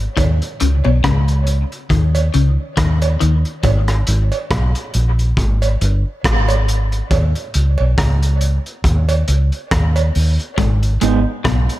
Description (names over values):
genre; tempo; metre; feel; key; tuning
dub reggae; 69 BPM; 4/4; swing 57% on 16ths; unclear; A4 = 440 Hz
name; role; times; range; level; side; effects
vintage muted fingered electric bass; bass; 0.0-11.7 s; G1 to D#2; -15 LUFS; equal; none
clean electric guitar; riff; 0.2-3.9, 10.6-11.6 s; G#2 to D#3; -23 LUFS; left 6 dB; dub echo
crunchy breakbeat drum kit; drums; 0.2-11.8 s; hi-hat, kick drum, rim click; -20 LUFS; equal; none
cowbell; percussion; 0.2-10.1 s; none; -27 LUFS; right 5 dB; dub echo
mellow electric guitar; accompaniment; 11.0-11.2 s; G#3 to D#4; -18 LUFS; right 7 dB; dub echo
room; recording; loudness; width
studio reverb; none; -14 LUFS; side -16 dB against mid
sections
0.0-11.8 A section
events
break 0.0-10.6; part muted 10.6-11.8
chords
0.2 Badd9 (rootless); 3.6 N.C.; 7.1 Badd9 (rootless); 10.6 G#m